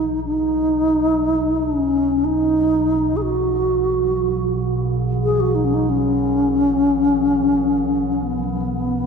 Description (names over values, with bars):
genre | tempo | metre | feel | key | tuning
world meditative, free-time meditation music | free time | none | none | B major pentatonic | A4 = 440 Hz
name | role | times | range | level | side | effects
bass flute | melody | 0.0-9.1 s | B3 to G#4 | -17 LUFS | equal | ping-pong delay
metallic inharmonic drone | drone | 0.0-9.1 s | B1 | -24 LUFS | right 1 dB | chorus, built-in reverb
quartz singing bowl | texture | 8.4-9.1 s | F#3 to C#4 | -28 LUFS | right 4 dB | none
room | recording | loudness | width
wet church reverb, RT60 3.7 s | dark, warm production | -16 LUFS | side -6 dB against mid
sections
0.0-9.1 A section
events
none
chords
none